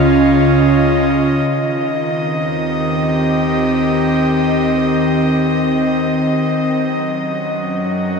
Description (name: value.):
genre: ambient.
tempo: free time.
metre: none.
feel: none.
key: Eb mixolydian.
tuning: A4 = 440 Hz.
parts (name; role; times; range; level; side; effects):
airy breathy pad; sustained chords; 0.0-8.2 s; Db3 to Eb5; -13 LUFS; equal; chorus, shimmer reverb.
deep rumbling drone; bass; 0.0-8.2 s; Db2 to Gb2; -30 LUFS; equal; built-in reverb, phaser.
room: wet huge ambient reverb, RT60 8.7 s.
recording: none.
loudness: -13 LUFS.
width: side -5 dB against mid.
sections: 0.0-1.5 A section; 1.5-8.2 B section.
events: fade-in on synth drone 1.5-8.2.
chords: 0.0 Dbadd9; 1.5 Eb6; 6.9 Gb6.